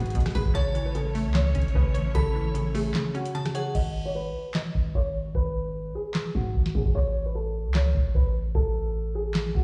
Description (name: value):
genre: hip hop, trap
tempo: 150 BPM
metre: 4/4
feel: half-time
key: G# phrygian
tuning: A4 = 441 Hz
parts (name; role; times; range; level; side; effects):
- dark concert grand piano; melody; 0.0-9.6 s; F#4 to D#5; -35 LUFS; equal; low-pass filter, digital delay
- hollow square pluck; accompaniment; 0.0-3.7 s; B2 to C#5; -33 LUFS; equal; chorus
- dark symphonic string section; sustained chords; 0.0-3.7 s; D#3 to C#5; -39 LUFS; equal; none
- clean 808-style bass; bass; 0.0-9.6 s; G#1 to G#2; -29 LUFS; equal; none
- booming analog drum machine; drums; 0.0-9.6 s; crash cymbal, handclaps, hi-hat, kick drum, rim click, snare drum; -30 LUFS; equal; none
- glassy synth bell; second line; 0.3-3.7 s; F#5 to B5; -42 LUFS; equal; chorus, phaser, digital delay
room: digital ambience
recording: played on a big sound system in a bare room, stone room reverb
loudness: -26 LUFS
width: mono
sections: 0.0-3.8 A section; 3.8-9.6 B section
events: kick muted 3.0-3.8; hi-hats muted 3.8-9.6; filter sweep on grand piano 3.8-9.6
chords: 0.0 G#m; 0.6 A; 3.8 G#m; 7.0 A